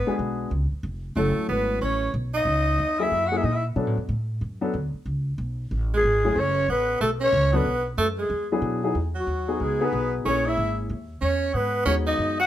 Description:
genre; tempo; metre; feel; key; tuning
jazz; 185 BPM; 4/4; swing 64% on 8ths; E major from 8.9 s; A4 = 439 Hz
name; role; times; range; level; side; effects
growling clarinet; melody; 0.0-3.7, 6.0-12.5 s; F#4 to F#5; -25 LUFS; left 1 dB; plate reverb
bright tenor saxophone; second line; 0.0-3.6, 5.9-12.5 s; F#3 to F#4; -28 LUFS; right 5 dB; none
upright bass; bass; 0.0-12.5 s; E#1 to B2; -27 LUFS; equal; none
warm grand piano; accompaniment; 0.1-12.4 s; F#3 to A4; -27 LUFS; left 3 dB; none
room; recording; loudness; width
moderate club reverb, RT60 0.6 s; none; -22 LUFS; side -12 dB against mid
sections
0.0-8.9 A section; 8.9-12.5 B section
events
none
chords
0.0 G#m7b5; 0.5 C#; 1.2 F#m7; 2.5 C#m; 3.1 F#7; 3.8 Bm7; 5.1 C#5; 6.4 F#m; 7.7 B5; 8.3 E7; 8.9 Emaj9; 10.2 A#m7b5; 10.9 C#madd9/D#; 11.5 G#m7

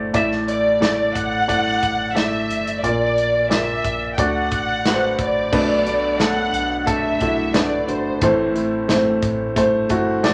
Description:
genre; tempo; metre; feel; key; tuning
piano-driven pop; 89 BPM; 4/4; straight; unclear; A4 = 440 Hz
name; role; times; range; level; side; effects
clear upright piano; accompaniment; 0.0-10.3 s; A2 to D5; -23 LUFS; equal; none
round analog bass; bass; 0.0-10.3 s; G1 to D2; -34 LUFS; equal; none
modern studio drum kit; drums; 0.1-10.3 s; crash cymbal, hi-hat, kick drum, snare drum; -26 LUFS; equal; none
dark studio violin section; melody; 0.2-8.6 s; C5 to G5; -23 LUFS; equal; none
fingerpicked plugged-in steel-string acoustic guitar; riff; 5.5-10.3 s; A2 to F#4; -29 LUFS; equal; none
room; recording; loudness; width
wet studio ambience, RT60 0.5 s; none; -19 LUFS; mono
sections
0.0-5.5 A section; 5.5-10.3 B section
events
none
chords
0.1 Dsus2/A; 2.8 Bb; 4.2 D; 5.5 Bm7; 8.2 Am

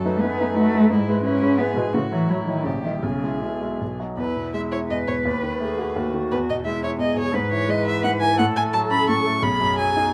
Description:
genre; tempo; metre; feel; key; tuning
quick classical-period movement for piano trio; 172 BPM; 3/4; rubato; E major; A4 = 440 Hz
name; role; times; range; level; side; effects
warm violin; melody; 0.0-10.1 s; E4 to C#6; -28 LUFS; equal; none
warm cello; second line; 0.0-10.1 s; B2 to B4; -26 LUFS; equal; none
clear baby grand piano; accompaniment; 0.0-10.1 s; A#1 to E5; -26 LUFS; equal; none
room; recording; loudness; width
moderate large studio reverb, RT60 1.1 s; none; -22 LUFS; mono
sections
0.0-4.2 A section; 4.2-10.1 B section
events
none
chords
0.0 B7/F#; 0.9 E/G#; 1.9 F#m7/A; 2.7 A#dim7; 3.0 E/B; 3.8 B; 4.2 E; 5.3 B7/D#; 6.3 E; 7.3 E/G#; 8.4 F#m/A; 9.4 B

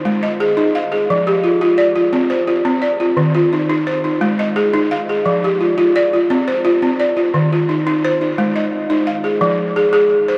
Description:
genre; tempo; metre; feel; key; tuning
west african traditional; 115 BPM (dotted quarters); 12/8; straight; F dorian; A4 = 440 Hz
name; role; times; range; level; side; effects
balafon; solo; 0.0-10.4 s; Eb3 to F5; -16 LUFS; equal; none
room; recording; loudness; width
wet huge ambient reverb, RT60 8.1 s; in a vast, echoing space; -16 LUFS; mono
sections
0.0-9.4 A section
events
none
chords
0.1 Ab; 1.1 F5; 3.2 Cmadd11/Eb; 4.2 Ab; 5.3 F5; 7.3 Cmadd11/Eb; 8.4 Ab; 9.4 Fm

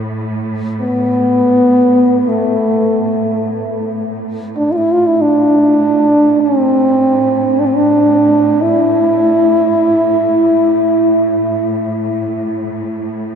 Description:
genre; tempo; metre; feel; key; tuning
caucasian folk, Caucasian lament; free time; none; none; A minor; A4 = 440 Hz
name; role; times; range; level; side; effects
warm chamber cello section; drone; 0.0-13.4 s; A2; -22 LUFS; right 2 dB; none
mellow French horn; melody; 0.8-12.6 s; A3 to F4; -11 LUFS; equal; ping-pong delay
room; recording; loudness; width
wet huge ambient reverb, RT60 4.7 s; dreamy mix soaked in reverb; -11 LUFS; side -7 dB against mid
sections
0.0-3.8 A section; 3.8-13.4 A section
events
none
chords
none

